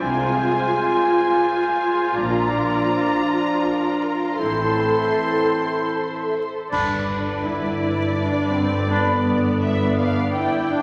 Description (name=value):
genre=cinematic, emotional film score for orchestra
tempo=77-85 BPM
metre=3/4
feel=rubato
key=unclear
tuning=A4 = 440 Hz
part: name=muted studio violin section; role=melody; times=0.0-10.8 s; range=D5 to C6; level=-31 LUFS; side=equal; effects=none
part: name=muted studio violin section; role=second line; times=0.0-10.8 s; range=C4 to E5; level=-36 LUFS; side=equal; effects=none
part: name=silver concert flute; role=second line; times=0.0-9.2 s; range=Ab5 to B5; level=-29 LUFS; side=equal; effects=none
part: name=warm clarinet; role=second line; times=0.0-9.2 s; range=D4 to F4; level=-31 LUFS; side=equal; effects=none
part: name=warm oboe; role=second line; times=0.0-9.2 s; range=C5 to D5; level=-33 LUFS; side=equal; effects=none
part: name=muted studio viola section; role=accompaniment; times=0.0-10.8 s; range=B3 to A4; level=-27 LUFS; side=equal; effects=none
part: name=mellow French horn section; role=sustained chords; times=0.0-10.8 s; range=D3 to B4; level=-27 LUFS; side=equal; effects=none
part: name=muted studio cello section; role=bass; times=0.0-10.8 s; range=G2 to C3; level=-30 LUFS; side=equal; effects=none
part: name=muted studio double bass section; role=bass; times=0.0-10.8 s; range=G1 to C2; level=-34 LUFS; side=equal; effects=none
part: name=clash cymbals and concert bass drum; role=percussion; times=6.7-8.1 s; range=none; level=-39 LUFS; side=equal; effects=none
room=wet scoring stage reverb, RT60 1.8 s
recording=vinyl crackle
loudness=-21 LUFS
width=mono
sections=0.0-6.7 A section; 6.7-10.8 B section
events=band accent 6.7-7.5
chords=0.0 Fm/C; 2.2 Bb; 4.4 Am; 6.7 G